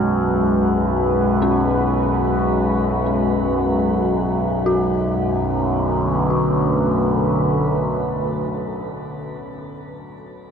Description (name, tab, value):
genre	dark ambient drone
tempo	free time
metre	none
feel	none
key	B minor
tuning	A4 = 440 Hz
part	deep dark ambient pad	sustained chords	0.0-9.5 s	D3 to B4	-21 LUFS	equal	chorus, built-in reverb, shimmer reverb
part	overtone-sweeping drone	drone	0.0-9.2 s	B1 to F#2	-21 LUFS	equal	chorus, built-in reverb
part	bronze singing bowl	texture	0.0-4.7 s	F#4	-36 LUFS	right 3 dB	none
part	dark detuned synth bell	arpeggios	1.4-10.5 s	C#4 to F#4	-27 LUFS	left 3 dB	chorus, ping-pong delay, shimmer reverb
room	wet huge ambient reverb, RT60 8.1 s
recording	none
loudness	-17 LUFS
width	side -7 dB against mid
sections	0.0-4.7 A section; 4.7-9.0 B section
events	none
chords	0.0 G#m7; 4.7 Bm7